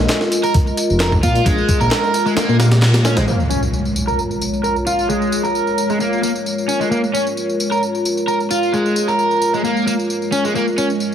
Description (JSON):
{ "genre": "breakbeat, breaks", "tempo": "132 BPM", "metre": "4/4", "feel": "straight", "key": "Bb minor", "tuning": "A4 = 442 Hz", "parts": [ { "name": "dark analog pad", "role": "sustained chords", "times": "0.0-11.1 s", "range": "Ab3 to Eb5", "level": "-21 LUFS", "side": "equal", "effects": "chorus, phaser, sidechain pumping" }, { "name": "dark detuned saw bass", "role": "bass", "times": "0.0-3.2 s", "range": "F1 to Bb2", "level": "-15 LUFS", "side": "equal", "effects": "none" }, { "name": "breakbeat sampler-style drum kit", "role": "drums", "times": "0.1-3.3 s", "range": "hi-hat, kick drum, snare drum", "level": "-18 LUFS", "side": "equal", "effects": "none" }, { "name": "electronic handclaps and tambourine", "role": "drums", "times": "0.1-11.1 s", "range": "none", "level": "-27 LUFS", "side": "left 1 dB", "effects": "none" }, { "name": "overdriven semi-hollow guitar", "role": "riff", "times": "0.4-10.9 s", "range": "Ab3 to Bb4", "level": "-19 LUFS", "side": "equal", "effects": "tube saturation, low-pass filter, dub echo" }, { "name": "impact", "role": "sound effects", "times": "3.3-5.1 s", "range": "none", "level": "-22 LUFS", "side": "equal", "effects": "none" } ], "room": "moderate plate reverb, RT60 1.7 s, digital ambience", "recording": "heavily compressed radio sound, multiband compression", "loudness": "-15 LUFS", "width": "side -9 dB against mid", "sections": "0.0-3.3 A section; 3.3-11.1 B section", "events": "band accent 2.8; impact 3.3-5.1; filter sweep on overdriven electric guitar 3.3-11.1", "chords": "0.0 Bb7(no3); 3.3 Bbm7" }